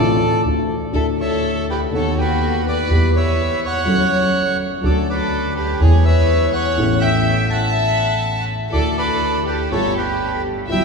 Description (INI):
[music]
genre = tango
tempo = 123 BPM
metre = 4/4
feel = rubato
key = D major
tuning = A4 = 440 Hz
[part]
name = bandoneon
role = melody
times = 0.0-10.8 s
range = G4 to A5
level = -21 LUFS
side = right 2 dB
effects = none
[part]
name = warm studio violin section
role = second line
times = 0.0-10.8 s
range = F#4 to E5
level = -23 LUFS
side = left 3 dB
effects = none
[part]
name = dark baby grand piano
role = accompaniment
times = 0.0-10.8 s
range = G1 to F#5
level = -21 LUFS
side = left 2 dB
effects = none
[part]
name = upright bass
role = bass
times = 0.0-10.8 s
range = F#1 to E2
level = -20 LUFS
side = right 1 dB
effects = none
[sound]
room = wet cathedral reverb, RT60 4.2 s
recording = recorded in a church or concert hall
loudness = -15 LUFS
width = side -4 dB against mid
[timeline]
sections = 0.9-10.8 A section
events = none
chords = 0.0 Dm7; 0.9 Dsus2; 1.9 B7/D#; 2.9 Em; 3.9 F#m; 4.8 D; 5.8 E; 6.8 Aadd9; 8.7 Dsus2; 9.7 Gadd9